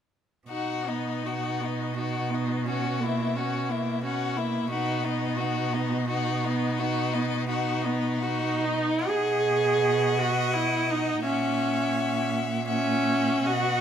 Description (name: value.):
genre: classical, slow romantic movement for string quartet.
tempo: 65-90 BPM.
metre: 3/4.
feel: rubato.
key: B major.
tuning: A4 = 441 Hz.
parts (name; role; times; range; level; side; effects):
rich violin; melody; 0.5-13.8 s; D#5 to F#5; -32 LUFS; left 13 dB; none.
clear violin; second line; 0.5-13.8 s; D#4 to E5; -32 LUFS; left 5 dB; none.
clear viola; accompaniment; 0.5-13.8 s; A#3 to G#4; -27 LUFS; right 2 dB; none.
clear cello; bass; 0.5-13.8 s; A#2 to B2; -30 LUFS; right 4 dB; none.
room: moderate scoring stage reverb, RT60 1.9 s.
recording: close, detailed microphones.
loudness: -24 LUFS.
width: side -8 dB against mid.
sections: 0.5-9.1 A section; 9.1-13.8 B section.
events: none.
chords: 0.5 B; 2.7 F#7/B; 4.7 B; 11.2 F#7/A#.